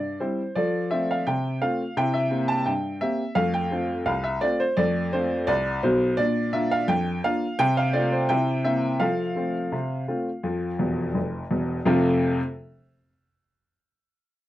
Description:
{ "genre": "ragtime piano", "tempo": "85 BPM", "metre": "2/4", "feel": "straight", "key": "F major", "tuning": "A4 = 442 Hz", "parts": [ { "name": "clear upright piano", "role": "solo", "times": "0.0-12.4 s", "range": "E1 to A5", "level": "-22 LUFS", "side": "equal", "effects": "none" } ], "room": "light reverb", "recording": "dry, close 1970s-style studio recording", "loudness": "-22 LUFS", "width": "side -14 dB against mid", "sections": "0.0-11.9 A section; 11.9-13.3 B section", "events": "upright piano fill 10.8-11.9", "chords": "0.0 C; 0.6 F; 2.0 C7; 3.4 F; 6.2 Bb; 7.6 F/C; 8.3 C7; 9.0 F" }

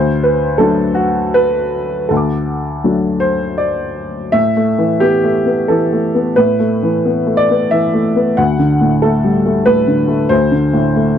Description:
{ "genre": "neoclassical minimalist piano", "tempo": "76-94 BPM", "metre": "3/4", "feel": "rubato", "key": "A dorian", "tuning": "A4 = 442 Hz", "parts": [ { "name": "warm upright piano", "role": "solo", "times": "0.0-11.2 s", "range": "D2 to D6", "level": "-12 LUFS", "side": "equal", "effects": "none" } ], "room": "light reverb", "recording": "dry, close 1970s-style studio recording", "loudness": "-12 LUFS", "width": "side -9 dB against mid", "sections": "0.0-4.3 A section; 4.3-11.2 B section", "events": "none", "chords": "0.0 D; 4.3 Asus2; 8.4 D" }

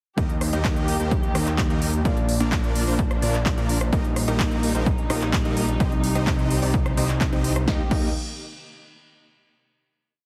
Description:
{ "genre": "EDM, festival progressive house", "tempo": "128 BPM", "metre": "4/4", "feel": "straight", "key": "Eb major", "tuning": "A4 = 436 Hz", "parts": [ { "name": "mellow electric guitar", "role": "accompaniment", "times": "0.2-8.1 s", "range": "Bb2 to Eb5", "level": "-29 LUFS", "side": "equal", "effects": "sidechain pumping" }, { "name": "dark studio string section", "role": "sustained chords", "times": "0.2-7.9 s", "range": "C3 to G4", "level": "-34 LUFS", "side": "equal", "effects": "sidechain pumping" }, { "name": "dense compressed supersaw", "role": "riff", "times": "0.2-8.1 s", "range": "Bb3 to Eb5", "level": "-31 LUFS", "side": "equal", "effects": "sidechain pumping, delay" }, { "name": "detuned saw bass", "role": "bass", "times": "0.2-8.1 s", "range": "Bb1 to Eb2", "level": "-31 LUFS", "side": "equal", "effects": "chorus, tube saturation, sidechain pumping" }, { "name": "big-room dance drum kit", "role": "drums", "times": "0.2-8.0 s", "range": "crash cymbal, handclaps, hi-hat, rim click, snare drum", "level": "-32 LUFS", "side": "equal", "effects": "overdrive" }, { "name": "electronic kick drum", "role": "drums", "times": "0.2-8.0 s", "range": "none", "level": "-27 LUFS", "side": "equal", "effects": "overdrive" } ], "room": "light reverb, digital ambience", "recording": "heavily compressed radio sound", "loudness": "-22 LUFS", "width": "mono", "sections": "0.2-7.7 drop; 7.7-9.6 final chord", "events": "drop 0.2-7.7", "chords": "0.2 Eb; 2.1 Bb; 3.9 Eb/Bb; 5.8 Cm; 7.7 Eb" }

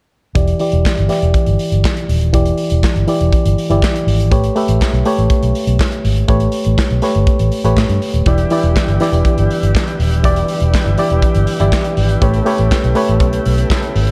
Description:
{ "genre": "disco", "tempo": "121 BPM", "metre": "4/4", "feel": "straight", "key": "E dorian", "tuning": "A4 = 440 Hz", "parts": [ { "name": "barky reed electric piano", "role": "accompaniment", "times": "0.3-14.1 s", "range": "E3 to E5", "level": "-19 LUFS", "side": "equal", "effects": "overdrive, low-pass filter" }, { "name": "vintage muted fingered electric bass", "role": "bass", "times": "0.4-14.1 s", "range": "D#1 to A2", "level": "-17 LUFS", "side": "equal", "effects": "none" }, { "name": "modern studio drum kit", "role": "drums", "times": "0.4-14.1 s", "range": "handclaps, hi-hat, kick drum, snare drum", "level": "-20 LUFS", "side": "equal", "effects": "none" }, { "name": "tonewheel organ", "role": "sustained chords", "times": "8.3-14.1 s", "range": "C#3 to G4", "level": "-26 LUFS", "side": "equal", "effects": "slow rotary speaker, low-pass filter" } ], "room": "studio reverb", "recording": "dark, warm production", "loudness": "-14 LUFS", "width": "mono", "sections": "0.4-14.1 A section", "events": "filter sweep 0.4-14.1", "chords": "0.4 Em7; 4.3 A9; 8.3 Em7; 12.2 A9" }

